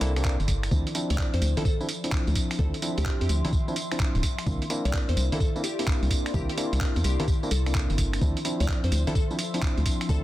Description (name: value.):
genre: UK garage, two-step garage.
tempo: 128 BPM.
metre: 4/4.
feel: swing 66% on 16ths.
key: D minor.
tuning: A4 = 439 Hz.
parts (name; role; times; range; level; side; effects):
glassy wavetable pluck; melody; 0.0-10.2 s; G4 to D5; -37 LUFS; left 2 dB; chorus, dub echo.
tine electric piano; stabs; 0.0-10.2 s; F3 to G4; -32 LUFS; equal; overdrive, dub echo.
organ-like FM bass; bass; 0.0-10.2 s; D1 to F2; -25 LUFS; equal; none.
boom bap sampler-style drum kit; drums; 0.0-10.2 s; congas, finger snaps, handclaps, hi-hat, tambourine; -32 LUFS; equal; studio ambience, soft clipping on snare.
warbly tape-like pad; texture; 0.0-10.2 s; F3 to C6; -37 LUFS; left 2 dB; chorus, built-in reverb, sidechain pumping.
electronic kick drum; drums; 0.2-10.2 s; none; -26 LUFS; equal; studio ambience.
room: little or no reverb.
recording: dense, heavily limited modern master.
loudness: -24 LUFS.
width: side -15 dB against mid.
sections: 0.0-10.2 A section.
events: none.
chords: 0.0 C9; 0.7 Dm9; 4.2 C9; 8.2 Dm9.